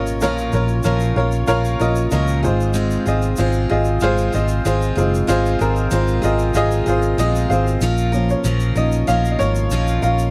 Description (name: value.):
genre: piano-driven pop.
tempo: 95 BPM.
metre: 4/4.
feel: straight.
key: Bb minor.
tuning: A4 = 440 Hz.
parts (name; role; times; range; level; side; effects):
warm upright piano; accompaniment; 0.0-10.3 s; Ab2 to F5; -22 LUFS; equal; none.
picked steel-string acoustic guitar; riff; 0.0-10.3 s; Bb2 to Bb4; -26 LUFS; equal; none.
vintage muted fingered electric bass; bass; 0.0-10.3 s; Gb1 to Db2; -22 LUFS; equal; none.
egg shaker; percussion; 0.1-10.3 s; none; -39 LUFS; equal; none.
room: little or no reverb.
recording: dry, close 1970s-style studio recording.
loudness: -18 LUFS.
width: mono.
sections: 0.0-7.8 A section; 7.8-10.3 B section.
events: upright piano solo 7.8-10.3.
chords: 0.0 Bbm; 2.4 Fm; 7.8 Bbm.